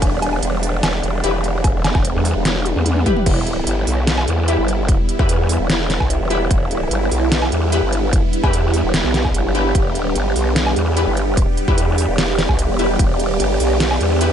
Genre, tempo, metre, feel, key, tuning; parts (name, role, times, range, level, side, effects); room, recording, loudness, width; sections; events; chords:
heavy wobble dubstep; 148 BPM; 4/4; half-time; E minor; A4 = 440 Hz
supersaw chords; sustained chords; 0.0-14.3 s; G3 to G4; -23 LUFS; right 2 dB; phaser, sidechain pumping
growl bass; bass; 0.0-14.3 s; E1 to E2; -19 LUFS; equal; chorus, overdrive
dubstep drum kit; drums; 0.0-14.3 s; crash cymbal, hi-hat, snare drum, toms, woodblock; -21 LUFS; equal
electronic kick drum; drums; 0.0-13.1 s; -18 LUFS; equal
orchestra-hit-like synth stab; stabs; 1.2-14.3 s; E4 to B4; -25 LUFS; left 3 dB; built-in reverb, ping-pong delay
ethereal airy pad; texture; 4.4-14.3 s; D4 to D5; -25 LUFS; right 1 dB; ensemble chorus, built-in reverb, sidechain pumping
digital ambience; nothing above 11.0 kHz; -15 LUFS; side -9 dB against mid
0.0-3.3 A section; 3.3-14.3 A section
drop 0.0-3.3, 3.3-14.3; drum fill 2.5-3.3
0.0 Em